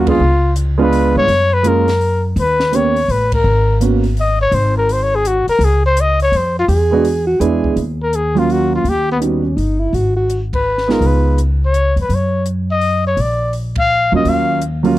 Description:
jazz, small-group swing and bop; 166 BPM; 3/4; swing 65% on 8ths; Eb minor; A4 = 440 Hz
warm trumpet; melody; 0.0-14.6 s; B3 to F5; -16 LUFS; left 2 dB
warm grand piano; accompaniment; 0.0-4.0, 6.9-11.4, 14.1-15.0 s; Gb3 to Ab4; -16 LUFS; right 5 dB
upright bass; bass; 0.0-15.0 s; G1 to G2; -17 LUFS; equal
compact cocktail drum kit; drums; 0.1-15.0 s; hi-hat, kick drum, ride cymbal, snare drum; -27 LUFS; equal
dark alto saxophone; second line; 6.7-10.4 s; Db4 to G#4; -18 LUFS; right 2 dB
small room ambience; dry, close 1970s-style studio recording; -12 LUFS; side -15 dB against mid
0.0-7.8 A section; 7.8-15.0 B section
band accent 0.0, 3.3, 10.5, 13.7
0.2 Db7b9; 1.3 Gbmaj9; 2.4 Eb7b13; 3.5 Abm11; 4.5 Abadd9; 5.6 Db; 6.7 E7; 7.8 Ebm9; 8.9 Eb7alt; 9.9 Abm; 11.0 Db9; 12.1 Gb5; 13.2 Bb; 14.3 Ebm9

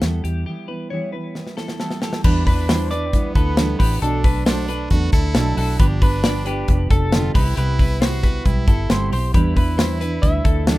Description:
jangly indie pop; 135 BPM; 4/4; straight; A4 = 441 Hz
fingerpicked steel-string acoustic guitar; accompaniment; 0.0-10.8 s; G2 to B4; -26 LUFS; right 3 dB
clean electric guitar; arpeggios; 0.0-10.8 s; F#4 to D5; -30 LUFS; left 6 dB; analog chorus
vintage muted fingered electric bass; bass; 0.0-10.8 s; F1 to E2; -21 LUFS; equal
modern studio drum kit; drums; 0.0-10.8 s; crash cymbal, hi-hat, kick drum, snare drum; -18 LUFS; equal
semi-hollow electric guitar; melody; 1.8-10.8 s; G4 to E5; -28 LUFS; right 1 dB
brilliant trumpet; second line; 2.2-10.8 s; B3 to F#4; -32 LUFS; right 3 dB
little or no reverb; rough home demo mix; -16 LUFS; side -18 dB against mid
0.0-2.2 A section; 2.2-10.8 B section
break 0.5-2.2; drum fill 1.4-2.2
0.0 Em; 2.2 Em7; 4.0 Bm7; 5.8 G7; 7.3 Cmaj7; 9.3 Em7

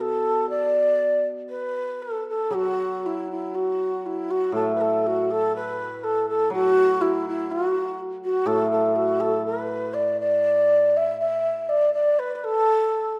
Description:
chinese traditional; 60 BPM; 2/4; rubato; A4 = 442 Hz
breathy mellow xiao; melody; 0.0-13.2 s; E4 to E5; -24 LUFS; equal
hammered dulcimer; accompaniment; 0.0-11.4 s; A2 to F#3; -31 LUFS; equal
wet scoring stage reverb, RT60 1.4 s; -23 LUFS; mono
0.0-2.5 A section; 2.5-13.2 B section

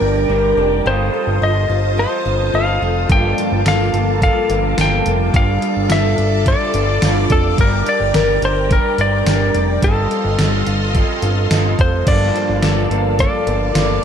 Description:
dream pop; 107 BPM; 4/4; straight; A4 = 442 Hz
clean lap steel guitar; melody; 0.0-14.0 s; A4 to G5; -20 LUFS; left 1 dB; tape echo, shimmer reverb
electric guitar through a small old amp; accompaniment; 0.0-14.0 s; G2 to Eb5; -23 LUFS; right 6 dB; harmonic tremolo, lush chorus, shimmer reverb
phased string machine; sustained chords; 0.0-14.0 s; Bb3 to Eb6; -24 LUFS; equal; ensemble chorus, phaser, shimmer reverb
fingerpicked twelve-string acoustic guitar; arpeggios; 0.0-14.0 s; G2 to Eb5; -22 LUFS; left 4 dB; analog chorus, tape echo, shimmer reverb
fat analog bass; bass; 0.0-14.0 s; F1 to G1; -18 LUFS; equal
gated 80s digital drum machine; drums; 3.1-13.9 s; crash cymbal, hi-hat, kick drum, snare drum, tambourine; -18 LUFS; equal; gated reverb, gated reverb snare, overdrive
light reverb; dark, warm production; -13 LUFS; side -8 dB against mid
0.0-12.1 A section; 12.1-14.0 B section
0.0 Gm; 0.9 F7/G; 3.1 Bbmaj7/G; 5.3 Dm/G; 7.6 Gm; 9.8 F7/G; 12.1 Bbmaj7/G

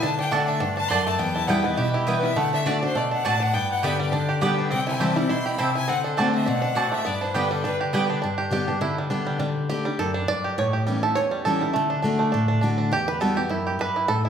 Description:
bluegrass; 205 BPM; 4/4; swing 56% on 8ths; G major; A4 = 440 Hz
bluegrass banjo; melody; 0.0-14.3 s; G3 to D5; -26 LUFS; right 3 dB
bright fiddle; second line; 0.0-7.7 s; G4 to C6; -28 LUFS; left 4 dB
picked steel-string acoustic guitar; accompaniment; 0.0-14.3 s; E2 to G4; -24 LUFS; left 1 dB
mandolin; stabs; 0.3-8.0 s; A3 to A5; -28 LUFS; right 3 dB
wet large studio reverb, RT60 1.4 s; band playing live in one room; -21 LUFS; side -8 dB against mid
0.0-8.2 A section; 8.2-14.3 A section
fiddle solo 0.0-8.2; five-string banjo solo 8.2-14.3
0.0 D; 1.2 Em; 2.4 D; 3.5 G; 4.7 C; 5.9 D7; 7.1 G; 9.4 Dsus4; 10.6 A7; 11.7 D; 12.9 Emadd9

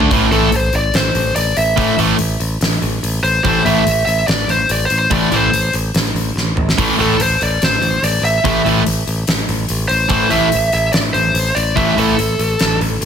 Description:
hard rock; 144 BPM; 4/4; straight; A minor; A4 = 440 Hz
distorted electric guitar; riff; 0.0-12.1 s; A2 to D4; -19 LUFS; right 12 dB; overdrive
sludgy distorted guitar; riff; 0.0-12.1 s; A2 to D4; -19 LUFS; left 11 dB; overdrive
modern bright picked electric bass; bass; 0.0-13.1 s; A1; -19 LUFS; equal
huge arena drum kit; drums; 0.0-13.1 s; crash cymbal, hi-hat, kick drum, snare drum, toms; -19 LUFS; equal
high-gain lead guitar; melody; 0.3-12.8 s; A4 to E5; -17 LUFS; equal; distortion, tape echo
light reverb, studio reverb; -13 LUFS; side -8 dB against mid
0.1-13.1 A section
drum fill 6.4-6.8
0.1 Am

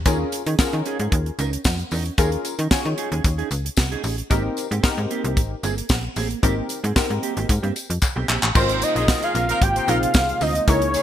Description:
early-eighties boogie funk; 113 BPM; 4/4; straight; Ab major; A4 = 442 Hz
funky polysynth comp; accompaniment; 0.1-11.0 s; C4 to Db5; -27 LUFS; left 4 dB; chorus
mellow electric guitar; riff; 0.1-11.0 s; Bb3 to C5; -30 LUFS; right 8 dB; analog chorus
slap-like FM bass; bass; 0.1-11.0 s; G1 to Eb3; -24 LUFS; equal
tight funk drum kit; drums; 0.1-11.0 s; crash cymbal, handclaps, hi-hat, kick drum, snare drum; -22 LUFS; equal
tambourine; percussion; 0.1-11.0 s; -34 LUFS; left 9 dB
fat analog lead; melody; 8.6-11.0 s; C5 to G5; -21 LUFS; equal; chorus
chorused pulse-width pad; sustained chords; 8.6-11.0 s; C3 to F4; -32 LUFS; equal
warm horn section; second line; 8.8-11.0 s; Bb3 to C5; -29 LUFS; left 1 dB
light reverb, small room ambience; bright 1980s-style digital production; -19 LUFS; side -11 dB against mid
0.0-8.6 A section; 8.6-11.0 B section
drum fill 8.0-8.6
0.1 Eb7sus4; 4.3 Abmaj9; 8.6 Ab69

